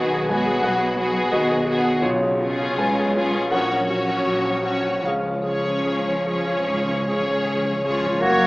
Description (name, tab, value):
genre	classical, romantic movement for piano and orchestra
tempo	71-91 BPM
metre	4/4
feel	rubato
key	unclear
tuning	A4 = 440 Hz
part	clear concert grand piano	melody	0.0-8.5 s	A#1 to G#5	-22 LUFS	equal	none
part	warm symphonic violin section	melody	0.0-8.5 s	G#4 to C#5	-28 LUFS	left 1 dB	none
part	rich symphonic violin section	second line	0.0-8.5 s	E#4 to C#5	-29 LUFS	left 1 dB	none
part	warm symphonic viola section	accompaniment	0.0-8.5 s	A#3 to C#4	-28 LUFS	equal	none
part	rich symphonic double bass section	bass	0.0-8.5 s	A#1 to F#2	-35 LUFS	right 1 dB	none
part	warm symphonic cello section	bass	0.0-8.5 s	C#3 to G#3	-29 LUFS	right 1 dB	none
part	timpani	percussion	5.0-8.5 s	F#2 to C#3	-33 LUFS	equal	none
part	clear clarinet	second line	7.8-8.5 s	E#4 to F#4	-24 LUFS	equal	none
part	hollow concert flute	second line	8.2-8.5 s	F#5	-23 LUFS	equal	none
part	warm oboe	second line	8.2-8.5 s	C#5	-22 LUFS	right 1 dB	none
part	warm bassoon	accompaniment	8.2-8.5 s	A#3	-22 LUFS	equal	none
part	mellow French horn section	sustained chords	8.2-8.5 s	A#3	-26 LUFS	left 1 dB	none
room	moderate scoring stage reverb, RT60 1.7 s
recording	small speaker sound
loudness	-19 LUFS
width	side -20 dB against mid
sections	0.0-8.2 A section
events	timpani fill 5.0-8.2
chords	0.0 G#m7/B; 2.0 C#7/B; 3.5 F#/A#; 5.0 C#